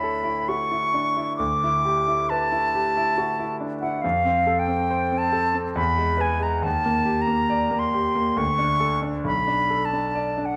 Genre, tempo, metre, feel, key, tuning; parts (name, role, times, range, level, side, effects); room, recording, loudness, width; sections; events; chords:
classical, impressionist duo for flute and grand piano; 69 BPM; 3/4; rubato; A4 = 440 Hz
concert flute; melody; 0.0-10.6 s; F5 to D6; -25 LUFS; equal
bright concert grand piano; accompaniment; 0.0-10.6 s; B1 to D5; -28 LUFS; equal
moderate recital hall reverb, RT60 1.4 s; -23 LUFS; mono
0.0-10.6 A section
0.0 Dmaj9; 1.4 Em11/D; 4.0 F; 5.8 E; 6.7 Ebmaj7; 8.4 D5; 9.3 Bm7